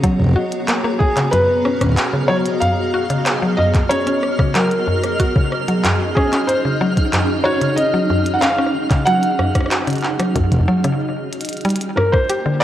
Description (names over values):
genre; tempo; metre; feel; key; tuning
IDM; 93 BPM; 4/4; straight; unclear; A4 = 439 Hz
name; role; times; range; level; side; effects
felt-muted upright piano; melody; 0.0-12.6 s; Ab4 to Gb5; -20 LUFS; equal; digital delay
granular cloud pad; sustained chords; 0.0-12.6 s; Bb3 to Bb5; -23 LUFS; equal; built-in reverb
mallet-like synth pluck; arpeggios; 0.0-12.5 s; Gb2 to G4; -20 LUFS; left 1 dB; chorus, tape echo
electronic kick drum; drums; 0.0-12.3 s; none; -16 LUFS; equal; overdrive
glitchy drum kit; drums; 0.0-12.6 s; handclaps, hi-hat, rim click; -23 LUFS; equal; overdrive
twinkling granular texture; texture; 1.8-11.0 s; F6; -30 LUFS; right 2 dB; built-in reverb
room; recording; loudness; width
wet lush hall reverb, RT60 1.9 s, digital ambience; worn, warbling old tape, cassette tape, warbly pitch drift; -15 LUFS; side -12 dB against mid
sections
0.0-11.6 A section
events
stop 11.0-11.6; drum fill 11.3-11.6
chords
0.0 Abm11; 5.2 Ebm11; 11.6 Gm11